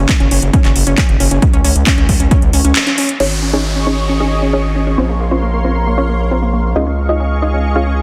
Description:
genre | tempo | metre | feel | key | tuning
uplifting trance | 135 BPM | 4/4 | straight | unclear | A4 = 440 Hz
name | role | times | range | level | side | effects
unison pluck | arpeggios | 0.0-8.0 s | Bb3 to Db4 | -23 LUFS | equal | sidechain pumping, dub echo
gritty driven synth bass | bass | 0.0-8.0 s | Gb1 to Db2 | -18 LUFS | equal | sidechain pumping
electronic kick drum | drums | 0.1-2.4 s | none | -15 LUFS | equal | overdrive
house drum kit | drums | 0.1-3.3 s | crash cymbal, handclaps, hi-hat | -20 LUFS | equal | overdrive
unison pluck | melody | 3.2-8.0 s | C4 to F5 | -22 LUFS | equal | sidechain pumping, dub echo
analog string pad | sustained chords | 3.5-8.0 s | Ab4 to Db6 | -24 LUFS | equal | ensemble chorus, sidechain pumping
downlifter | sound effects | 3.2-6.8 s | none | -29 LUFS | equal | none
room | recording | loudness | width
light reverb | dense, heavily limited modern master | -14 LUFS | mono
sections
0.0-3.2 A section; 3.2-8.0 B section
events
band accent 2.8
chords
0.0 Gb5; 1.4 N.C.; 3.2 Absus4; 5.0 Bbmadd9; 6.8 Dbadd9

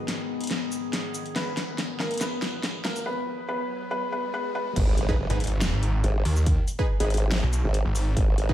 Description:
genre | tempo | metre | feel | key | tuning
heavy wobble dubstep | 141 BPM | 4/4 | half-time | G# minor | A4 = 439 Hz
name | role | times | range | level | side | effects
evolving wavetable pad | sustained chords | 0.0-3.0 s | G#2 to G#4 | -34 LUFS | left 5 dB | phaser, built-in reverb, sidechain pumping
riser, swell and impact | sound effects | 2.0-6.5 s | none | -38 LUFS | equal | none
dubstep drum kit | drums | 0.1-8.5 s | crash cymbal, hi-hat, shaker, snare drum | -31 LUFS | equal | small room reverb
felt-muted upright piano | melody | 1.4-4.7 s | A#3 to B4 | -31 LUFS | equal | low-pass filter, diffuse ambient delay
formant-sweep wobble bass | bass | 4.8-8.5 s | F#1 to G#1 | -24 LUFS | equal | chorus, overdrive
electronic kick drum | drums | 4.8-8.5 s | none | -24 LUFS | equal | small room reverb
supersaw stab | stabs | 5.1-8.5 s | D#4 to B4 | -32 LUFS | right 2 dB | diffuse ambient delay
snarling distorted saw bass | bass | 5.3-8.2 s | G#1 to D#2 | -24 LUFS | equal | distortion, overdrive
room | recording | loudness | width
light reverb | high-pass filter | -24 LUFS | side -12 dB against mid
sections
0.0-4.8 A section; 4.8-8.5 B section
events
build-up 0.0-4.8; drum fill 0.0-3.1; filter sweep on felt piano 0.0-4.8; filter sweep 0.0-4.8; riser 2.0-4.8; swell 3.9-4.8; drop 4.8-8.5; impact 4.8-6.5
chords
0.0 G#m

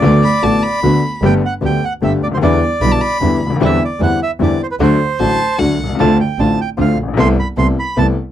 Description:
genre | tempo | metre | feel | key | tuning
tango | 151 BPM | 3/4 | rubato | G major | A4 = 439 Hz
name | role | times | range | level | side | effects
bandoneon | melody | 0.0-8.1 s | B4 to C6 | -19 LUFS | right 4 dB | none
bright upright piano | accompaniment | 0.0-8.1 s | G1 to G4 | -16 LUFS | left 4 dB | none
rich chamber string section | stabs | 0.0-8.1 s | G3 to A4 | -23 LUFS | right 6 dB | none
clear double bass | bass | 0.0-8.1 s | G1 to E2 | -17 LUFS | right 2 dB | none
warm violin | second line | 0.2-5.9 s | F#5 to B5 | -20 LUFS | left 1 dB | none
room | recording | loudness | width
little or no reverb | dry, close 1970s-style studio recording, faint mains hum | -12 LUFS | side -11 dB against mid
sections
0.0-1.2 A section; 1.2-8.3 B section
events
none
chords
0.0 D6; 1.2 Gadd9; 2.4 Em7; 3.6 Cadd9/E; 4.8 D; 6.0 Dm7; 7.2 Amadd9/C

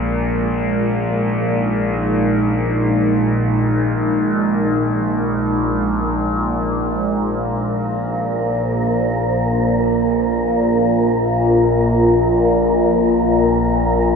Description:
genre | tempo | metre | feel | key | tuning
dark ambient drone | free time | none | none | unclear | A4 = 439 Hz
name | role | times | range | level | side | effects
deep dark ambient pad | sustained chords | 0.0-14.2 s | Ab3 to Bb4 | -18 LUFS | equal | chorus, built-in reverb
overtone-sweeping drone | drone | 0.0-14.2 s | Bb1 to Bb2 | -19 LUFS | left 1 dB | chorus, built-in reverb, phaser
wind-like tuned noise texture | texture | 7.5-14.2 s | Bb4 | -24 LUFS | right 2 dB | built-in reverb
room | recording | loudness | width
wet huge ambient reverb, RT60 7.3 s | none | -15 LUFS | side -5 dB against mid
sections
0.0-7.0 A section; 7.0-14.2 A section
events
none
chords
0.0 Ab5; 7.0 Bb5

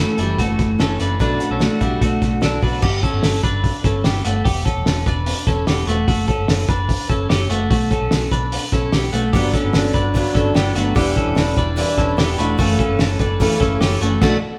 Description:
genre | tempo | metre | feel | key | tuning
jangly indie pop | 148 BPM | 4/4 | straight | unclear | A4 = 437 Hz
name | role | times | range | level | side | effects
picked steel-string acoustic guitar | accompaniment | 0.0-2.8, 9.3-14.4 s | F#2 to B4 | -24 LUFS | equal | none
twelve-string electric guitar | arpeggios | 0.0-14.4 s | G3 to B4 | -24 LUFS | equal | delay
vintage muted fingered electric bass | bass | 0.0-14.4 s | E1 to B1 | -25 LUFS | equal | none
cloth-damped thuddy drum kit | drums | 0.2-14.3 s | crash cymbal, hi-hat, kick drum, snare drum | -22 LUFS | equal | none
room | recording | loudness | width
moderate stone room reverb, RT60 1.4 s | band playing live in one room | -18 LUFS | mono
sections
0.0-2.8 A section; 2.8-14.6 B section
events
drum fill 14.2-14.6; band accent 14.2-14.6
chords
0.0 F#m7; 1.2 Bm7; 2.8 Gmaj7; 4.5 Em7; 6.1 F#m; 7.7 Bm7; 9.3 Gmaj7; 11.0 Em7; 12.6 F#m7

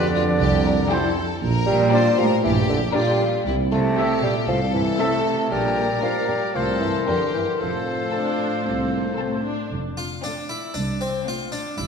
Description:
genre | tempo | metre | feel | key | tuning
cinematic, playful, whimsical film cue | 116 BPM | 4/4 | straight | F major | A4 = 442 Hz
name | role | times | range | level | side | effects
rich studio violin section | melody | 0.0-11.7 s | E4 to F5 | -29 LUFS | left 4 dB | none
baroque flute | second line | 0.0-9.4 s | D5 to A5 | -29 LUFS | left 1 dB | none
clear oboe | second line | 0.0-9.4 s | C5 to E5 | -32 LUFS | equal | none
warm clarinet | second line | 0.0-9.5 s | E4 to Bb4 | -32 LUFS | left 4 dB | none
warm studio violin section | second line | 0.0-11.6 s | C4 to A5 | -33 LUFS | left 5 dB | none
dark bassoon | accompaniment | 0.0-9.4 s | D3 to A3 | -24 LUFS | right 1 dB | none
warm studio viola section | accompaniment | 0.0-11.6 s | A3 to G4 | -32 LUFS | left 1 dB | none
warm French horn section | sustained chords | 0.0-9.4 s | C4 to Bb4 | -33 LUFS | left 3 dB | none
warm studio cello section | bass | 0.0-11.9 s | C2 to C3 | -27 LUFS | right 2 dB | none
mellow tuba | bass | 0.4-9.1 s | F1 to C2 | -28 LUFS | right 3 dB | none
warm studio double bass section | bass | 0.4-11.9 s | F1 to F2 | -30 LUFS | right 2 dB | none
harpsichord | melody | 10.0-11.9 s | C4 to F4 | -27 LUFS | left 2 dB | none
room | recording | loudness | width
wet concert hall reverb, RT60 1.8 s | none | -19 LUFS | side -6 dB against mid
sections
0.0-9.7 A section; 9.7-11.9 A section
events
none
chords
0.4 C; 1.4 Bbmaj7; 2.4 Gm/Bb; 3.5 C; 4.5 Am/C; 5.5 Bb; 6.6 C5; 7.6 F

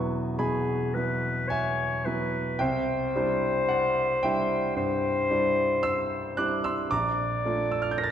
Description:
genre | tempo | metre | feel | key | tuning
classical, impressionist duo for clarinet and grand piano | 55 BPM | 4/4 | rubato | unclear | A4 = 440 Hz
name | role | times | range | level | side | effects
clear grand piano | accompaniment | 0.0-8.1 s | E1 to A#6 | -27 LUFS | right 2 dB | none
clear clarinet | melody | 0.4-8.1 s | G#4 to D5 | -27 LUFS | left 3 dB | none
room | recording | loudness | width
wet scoring stage reverb, RT60 1.5 s | none | -24 LUFS | side -9 dB against mid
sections
0.0-8.1 A section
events
none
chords
0.0 Eadd9; 2.6 Cadd9; 6.9 A#maj7

